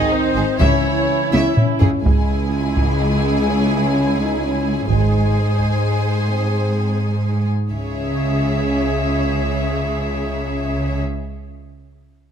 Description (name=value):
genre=cinematic, epic orchestral film score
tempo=127 BPM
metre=3/4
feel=straight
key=C# harmonic minor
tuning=A4 = 441 Hz
part: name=warm chamber violin section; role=melody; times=0.0-11.0 s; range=G#4 to G#5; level=-29 LUFS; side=left 4 dB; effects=none
part: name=mellow hollow silver concert flute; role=second line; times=0.0-1.5 s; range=G#4 to C#5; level=-27 LUFS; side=left 1 dB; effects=none
part: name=warm symphonic violin section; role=second line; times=0.0-11.0 s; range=G#4 to C#5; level=-30 LUFS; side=left 2 dB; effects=none
part: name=warm symphonic viola section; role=accompaniment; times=0.0-11.0 s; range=D#4 to G#4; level=-25 LUFS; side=right 3 dB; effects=none
part: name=bright trombone section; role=sustained chords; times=0.0-1.8 s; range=D#3 to C#4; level=-28 LUFS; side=right 5 dB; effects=none
part: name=dark French horn section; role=sustained chords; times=0.0-11.0 s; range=G#3 to E4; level=-25 LUFS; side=left 5 dB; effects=none
part: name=rich symphonic cello section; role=bass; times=0.4-11.0 s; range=C#2 to C#3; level=-20 LUFS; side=right 1 dB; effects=none
part: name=rich symphonic double bass section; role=bass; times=0.4-2.5, 4.9-5.3, 7.7-11.0 s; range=G#1 to C#2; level=-23 LUFS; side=right 3 dB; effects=none
part: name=solo taiko drums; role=drums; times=0.6-5.8 s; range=none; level=-19 LUFS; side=equal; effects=none
part: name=timpani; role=percussion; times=0.6-1.3 s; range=C#3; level=-27 LUFS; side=left 6 dB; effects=none
room=light reverb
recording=close, detailed microphones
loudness=-16 LUFS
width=side -8 dB against mid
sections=0.0-2.0 A section; 2.0-7.7 B section; 7.7-10.6 C section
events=drum fill 1.3-2.0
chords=0.0 G#; 0.6 C#m; 4.9 G#; 7.7 C#m